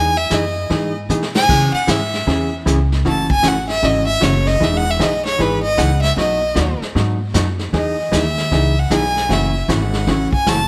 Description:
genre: country, western swing.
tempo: 154 BPM.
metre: 4/4.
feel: swing 64% on 8ths.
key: E major.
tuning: A4 = 436 Hz.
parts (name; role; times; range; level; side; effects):
clear fiddle; melody; 0.0-10.7 s; B4 to A5; -21 LUFS; equal; none.
hollow-body jazz guitar; accompaniment; 0.0-10.6 s; B2 to G#4; -23 LUFS; equal; none.
upright bass; bass; 0.0-10.7 s; E1 to C#3; -22 LUFS; equal; none.
vintage brush drum kit; drums; 0.3-10.7 s; brushed snare drum, crash cymbal, hi-hat, kick drum, snare drum; -25 LUFS; equal; none.
room: moderate echo chamber reverb, RT60 2.2 s.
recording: none.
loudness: -17 LUFS.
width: mono.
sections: 0.0-10.7 A section.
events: fiddle solo 0.0-10.7; drum fill 1.1-1.5.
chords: 0.0 Emaj7; 1.5 C#m7; 3.0 F#m7; 4.6 Emaj7; 6.2 B; 7.7 Emaj7; 9.3 F#m7.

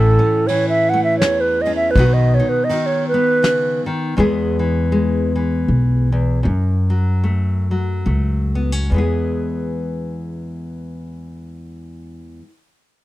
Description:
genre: acoustic folk duo or small band.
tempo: 69-81 BPM.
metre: 3/4.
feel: swing 59% on 8ths.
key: E major.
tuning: A4 = 441 Hz.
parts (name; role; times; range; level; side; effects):
baroque flute; melody; 0.0-3.8 s; A4 to F#5; -17 LUFS; right 2 dB; none.
nylon-string guitar; accompaniment; 0.0-12.5 s; E2 to G#4; -21 LUFS; left 2 dB; none.
upright bass; bass; 0.0-12.2 s; A1 to F#2; -18 LUFS; equal; none.
soft brush drum kit; drums; 0.5-3.6 s; kick drum, ride cymbal, snare drum; -24 LUFS; equal; none.
room: little or no reverb.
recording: dry, close 1970s-style studio recording.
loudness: -15 LUFS.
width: side -16 dB against mid.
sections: 0.0-4.2 A section; 4.2-8.9 B section; 8.9-11.5 C section.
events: slowing down 4.2-8.9.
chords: 0.0 A; 2.0 B; 4.2 E; 6.4 F#m; 8.9 E.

